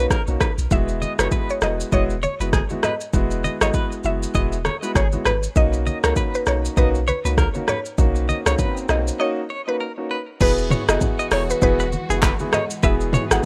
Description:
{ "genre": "afrobeats", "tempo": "99 BPM", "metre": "4/4", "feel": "swing 58% on 16ths", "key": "unclear", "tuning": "A4 = 440 Hz", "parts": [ { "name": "mallet-like synth pluck", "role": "melody", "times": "0.0-13.4 s", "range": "A#4 to F#5", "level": "-28 LUFS", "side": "equal", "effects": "chorus" }, { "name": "warm grand piano", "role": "accompaniment", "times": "0.0-13.5 s", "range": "G#3 to G#4", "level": "-29 LUFS", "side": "equal", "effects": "none" }, { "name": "direct-recorded clean electric guitar", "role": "riff", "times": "0.0-13.2 s", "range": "G#4 to D#5", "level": "-31 LUFS", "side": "equal", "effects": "tremolo, delay" }, { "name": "punchy sub bass", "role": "bass", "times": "0.0-13.4 s", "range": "E1 to C#2", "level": "-26 LUFS", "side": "equal", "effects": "none" }, { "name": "deep house drum kit", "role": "drums", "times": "0.1-13.4 s", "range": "crash cymbal, handclaps, hi-hat, kick drum, rim click, shaker, toms", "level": "-23 LUFS", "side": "equal", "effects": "none" }, { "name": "congas", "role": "percussion", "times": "1.0-13.3 s", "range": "none", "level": "-34 LUFS", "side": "equal", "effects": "none" }, { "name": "swell", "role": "sound effects", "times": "8.7-9.2 s", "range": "none", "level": "-40 LUFS", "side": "equal", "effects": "none" }, { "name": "warm studio string section", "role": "sustained chords", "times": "10.4-13.5 s", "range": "E3 to G#4", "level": "-35 LUFS", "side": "equal", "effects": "none" } ], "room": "digital ambience", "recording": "rough home demo mix", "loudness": "-21 LUFS", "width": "mono", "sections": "0.0-10.4 A section; 10.4-13.5 B section", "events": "break 9.2-10.4", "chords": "0.0 Bmaj7; 0.7 Eadd9; 5.6 Bmaj7; 10.4 Eadd9", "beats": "0.10 | 0.71 1.32 1.92 2.53 | 3.13 3.74 4.35 4.95 | 5.56 6.17 6.77 7.38 | 7.98 8.59 9.20 9.80 | 10.41 11.01 11.62 12.23 | 12.83 13.44" }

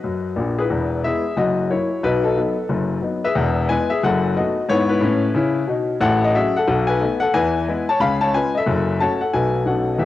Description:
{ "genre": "jazz, stride piano", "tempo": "181 BPM", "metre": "4/4", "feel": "swing 62% on 8ths", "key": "E major", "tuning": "A4 = 440 Hz", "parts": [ { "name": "clear grand piano", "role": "solo", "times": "0.0-10.1 s", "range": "E1 to B5", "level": "-17 LUFS", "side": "left 2 dB", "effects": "cassette tape" } ], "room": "light reverb, studio ambience", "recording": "home recording on cassette", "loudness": "-17 LUFS", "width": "side -14 dB against mid", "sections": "0.7-10.1 A section", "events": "none", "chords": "0.0 B; 0.7 E; 1.4 F#7; 2.0 B7; 3.4 E; 4.0 B7/F#; 4.7 E/G#; 6.0 F#m/A; 6.7 B7; 7.3 E; 8.0 C#7; 8.7 F#m7; 9.3 B7; 9.7 B9", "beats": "0.05 0.38 | 0.71 1.04 1.37 1.70 | 2.04 2.37 2.70 3.03 | 3.36 3.69 4.03 4.36 | 4.69 5.02 5.35 5.68 | 6.02 6.35 6.68 7.01 | 7.34 7.68 8.01 8.34 | 8.67 9.00 9.34 9.67 | 10.00" }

